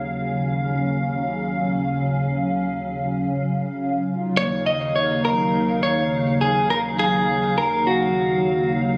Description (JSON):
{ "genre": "IDM", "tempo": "103 BPM", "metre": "4/4", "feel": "straight", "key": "Eb minor", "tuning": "A4 = 440 Hz", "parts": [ { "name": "hollow soft pad", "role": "sustained chords", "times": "0.0-9.0 s", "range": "Db3 to F5", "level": "-26 LUFS", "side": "equal", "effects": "ensemble chorus, vintage 12-bit sampler grit" }, { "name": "dark detuned saw bass", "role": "bass", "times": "0.0-9.0 s", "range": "Eb2", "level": "-30 LUFS", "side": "equal", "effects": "none" }, { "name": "clean electric guitar", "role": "melody", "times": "4.4-8.7 s", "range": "Gb4 to Eb5", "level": "-23 LUFS", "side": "equal", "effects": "digital delay" } ], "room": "moderate plate reverb, RT60 3.3 s", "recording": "recorded on a phone in the room, club reverb, compression", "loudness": "-22 LUFS", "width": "mono", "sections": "0.0-4.4 A section; 4.4-9.0 B section", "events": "none", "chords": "0.0 Ebm9", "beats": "0.29 0.88 1.46 | 2.04 2.62 3.21 3.79 | 4.37 4.96 5.54 6.12 | 6.70 7.29 7.87 8.45" }